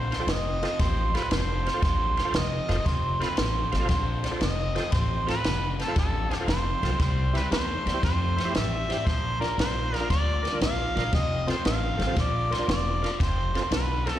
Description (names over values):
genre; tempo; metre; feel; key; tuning
electric blues shuffle; 116 BPM; 4/4; swing 67% on 8ths; F mixolydian; A4 = 440 Hz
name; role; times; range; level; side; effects
clear harmonica; melody; 0.0-14.2 s; A4 to F5; -30 LUFS; right 1 dB; overdrive, slapback echo
overdriven semi-hollow guitar; riff; 0.0-14.2 s; F2 to A3; -34 LUFS; left 5 dB; slapback echo
upright bass; bass; 0.0-14.1 s; E1 to F2; -28 LUFS; equal; none
tonewheel organ; accompaniment; 0.1-14.2 s; C4 to G5; -35 LUFS; right 3 dB; slow rotary speaker, overdrive, chorus vibrato, slapback echo
compact cocktail drum kit; drums; 0.1-14.1 s; kick drum, ride cymbal, snare drum; -29 LUFS; equal; none
room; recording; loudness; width
little or no reverb; live gig heard through the venue's PA, recital hall reverb; -23 LUFS; side -12 dB against mid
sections
0.0-14.2 A section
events
none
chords
0.0 F; 7.0 C; 9.1 Bb; 11.1 F; 12.2 Bb; 13.2 F